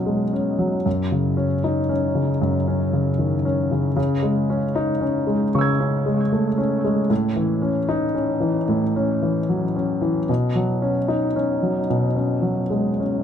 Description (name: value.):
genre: neoclassical minimalist piano.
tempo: 76 BPM.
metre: 4/4.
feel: rubato.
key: unclear.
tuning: A4 = 440 Hz.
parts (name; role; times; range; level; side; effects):
warm concert grand piano; solo; 0.0-13.2 s; F#2 to G#6; -19 LUFS; left 1 dB; tape echo.
room: light reverb.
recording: close, detailed microphones.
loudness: -19 LUFS.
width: side -8 dB against mid.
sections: 0.0-13.2 A section.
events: none.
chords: 0.0 Bsus2; 0.9 F#5; 4.0 C#m; 7.1 A; 10.3 Bsus2.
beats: 0.07 | 0.86 1.64 2.42 3.19 | 3.97 4.75 5.54 6.32 | 7.11 7.89 8.68 9.49 | 10.29 11.09 11.89 12.72.